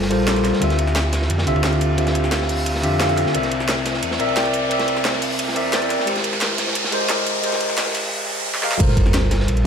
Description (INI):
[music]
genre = liquid drum and bass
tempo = 176 BPM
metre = 4/4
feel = straight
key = G dorian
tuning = A4 = 440 Hz
[part]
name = bell-like tine electric piano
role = accompaniment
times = 0.0-9.7 s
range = D3 to G5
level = -21 LUFS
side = equal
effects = wide subtle chorus, ping-pong delay
[part]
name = sub bass with octave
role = bass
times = 0.0-9.6 s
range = Eb1 to F2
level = -24 LUFS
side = equal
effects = none
[part]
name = crunchy breakbeat drum kit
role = drums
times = 0.0-9.6 s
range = hi-hat, ride cymbal, snare drum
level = -26 LUFS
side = equal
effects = high-pass filter on cymbals, high-pass filter on hats, high-pass filter on snare, high-pass filter on room
[part]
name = riser and sub drop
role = sound effects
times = 0.5-9.7 s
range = none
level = -26 LUFS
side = equal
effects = none
[part]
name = garage drum kit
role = drums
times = 0.1-9.6 s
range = crash cymbal, hi-hat, snare drum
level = -26 LUFS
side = equal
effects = overdrive, high-pass filter on hats, high-pass filter on snare, high-pass filter on cymbals
[part]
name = electronic kick drum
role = drums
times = 8.8-9.0 s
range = none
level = -17 LUFS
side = equal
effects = none
[sound]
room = moderate recital hall reverb, RT60 1.5 s, small room ambience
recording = high-pass filter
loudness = -17 LUFS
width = side -7 dB against mid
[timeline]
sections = 0.0-8.8 A section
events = build-up 0.0-8.8; filter sweep 0.0-8.8; riser 0.5-8.8; drum fill 8.5; impact 8.8-9.7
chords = 0.0 Gm11; 0.6 Dm11; 3.3 C9; 6.1 Abmaj9; 8.8 Gm11